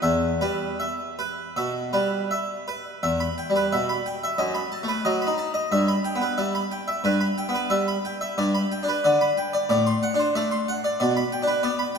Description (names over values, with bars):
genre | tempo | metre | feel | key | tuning
classical, baroque-style suite movement for harpsichord | 77-96 BPM | 4/4 | rubato | E minor | A4 = 441 Hz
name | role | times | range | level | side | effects
harpsichord | solo | 0.0-12.0 s | E2 to C6 | -22 LUFS | equal | none
room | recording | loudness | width
wet church reverb, RT60 3.9 s | none | -22 LUFS | side -6 dB against mid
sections
0.0-3.0 A section; 3.0-12.0 B section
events
none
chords
0.0 Em; 4.4 B7/F#; 5.7 Em/G; 8.4 G; 9.7 D7/A; 11.0 G/B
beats
| 0.03 0.81 1.57 2.31 | 3.04 3.73 4.39 5.05 | 5.71 6.38 7.05 7.71 | 8.39 9.05 9.70 10.36 | 11.01 11.64